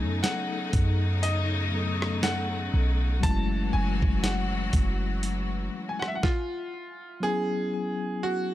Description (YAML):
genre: contemporary R&B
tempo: 60 BPM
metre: 4/4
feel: swing 58% on 16ths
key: F# dorian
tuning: A4 = 440 Hz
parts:
  - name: clear baby grand piano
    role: melody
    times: 0.0-8.5 s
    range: E#4 to A5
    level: -33 LUFS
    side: equal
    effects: ping-pong delay
  - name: mellow tine electric piano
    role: accompaniment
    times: 0.0-8.5 s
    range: F#3 to A4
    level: -32 LUFS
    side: left 3 dB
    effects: medium stereo tremolo
  - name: muted studio string section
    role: sustained chords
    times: 0.0-6.2 s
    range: C#3 to F#4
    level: -34 LUFS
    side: left 2 dB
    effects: sidechain pumping
  - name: clean 808-style bass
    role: bass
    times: 0.0-5.7 s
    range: F#1 to F#2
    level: -27 LUFS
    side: equal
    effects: none
  - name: dusty soul sampler-style drum kit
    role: drums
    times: 0.2-6.5 s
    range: hi-hat, kick drum, rim click, snare drum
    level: -27 LUFS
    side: equal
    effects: none
room: little or no reverb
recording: none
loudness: -25 LUFS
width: side -14 dB against mid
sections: 0.0-7.2 A section; 7.2-8.5 A section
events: none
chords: 0.0 B9; 3.2 F#m7; 6.2 N.C.; 7.2 E69